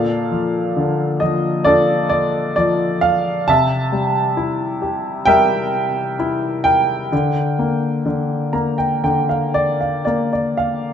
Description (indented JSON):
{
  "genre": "classical, lyrical solo piano",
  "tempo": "57-68 BPM",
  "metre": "4/4",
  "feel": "rubato",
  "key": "G minor",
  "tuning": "A4 = 440 Hz",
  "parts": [
    { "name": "clear upright piano", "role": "solo", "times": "0.0-10.9 s", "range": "Bb2 to Bb5", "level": "-16 LUFS", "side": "equal", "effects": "none" }
  ],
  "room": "moderate recital hall reverb, RT60 1.7 s",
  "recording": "nothing above 7.7 kHz",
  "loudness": "-16 LUFS",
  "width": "side -8 dB against mid",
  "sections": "0.0-10.9 A section",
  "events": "upright piano fill 8.1-10.9",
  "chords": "0.0 Bbmaj7; 3.5 C7; 7.1 Gm/D"
}